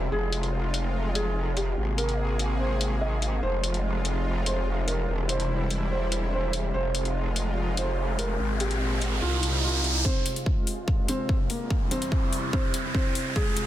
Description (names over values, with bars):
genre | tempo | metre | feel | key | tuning
heavy wobble dubstep | 145 BPM | 4/4 | half-time | F minor | A4 = 444 Hz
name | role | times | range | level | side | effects
supersaw pad | sustained chords | 0.0-13.7 s | E2 to Ab4 | -33 LUFS | left 1 dB | sidechain pumping, low-pass filter
growl bass | bass | 0.0-10.0 s | E1 to C2 | -27 LUFS | equal | chorus, overdrive
downlifter and riser | sound effects | 0.0-0.1, 7.6-13.7 s | none | -32 LUFS | right 2 dB | none
felt-muted upright piano | melody | 0.1-13.6 s | Ab3 to Eb5 | -32 LUFS | right 1 dB | digital delay
electronic hi-hat | drums | 0.3-13.7 s | none | -32 LUFS | left 2 dB | low-pass filter on snare, small room ambience, low-pass filter on hats, low-pass filter on toms
electronic kick drum | drums | 10.0-13.4 s | none | -26 LUFS | equal | small room ambience
room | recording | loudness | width
light reverb, digital ambience | dense, heavily limited modern master | -24 LUFS | side -13 dB against mid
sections
0.0-10.1 A section; 10.1-13.7 B section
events
riser 7.6-10.1, 10.1-13.7; build-up 10.1-13.7; filter sweep on supersaw synth 10.1-13.7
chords
0.1 Fm; 1.8 Abadd9; 3.4 Fm; 5.1 C/E; 6.7 Fm; 8.4 Abadd9; 9.2 Cm; 10.1 Fm; 11.7 C/E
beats
| 0.12 0.53 0.95 1.36 | 1.77 2.19 2.60 3.02 | 3.43 3.84 4.26 4.67 | 5.08 5.50 5.91 6.33 | 6.74 7.15 7.57 7.98 | 8.39 8.81 9.22 9.64 | 10.05 10.46 10.88 11.29 | 11.71 12.12 12.53 12.95 | 13.36